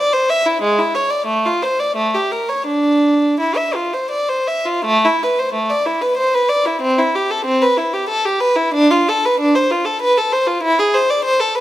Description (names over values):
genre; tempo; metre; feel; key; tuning
classical, baroque-style suite movement for unaccompanied violin; 79-99 BPM; 3/4; rubato; D minor, A minor from 4.8 s; A4 = 440 Hz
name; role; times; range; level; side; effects
warm violin; solo; 0.0-11.6 s; G#3 to E5; -14 LUFS; equal; none
room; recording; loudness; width
moderate recital hall reverb, RT60 1.6 s; close, detailed microphones; -14 LUFS; side -14 dB against mid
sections
0.0-4.8 A section; 4.8-11.6 A section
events
none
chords
none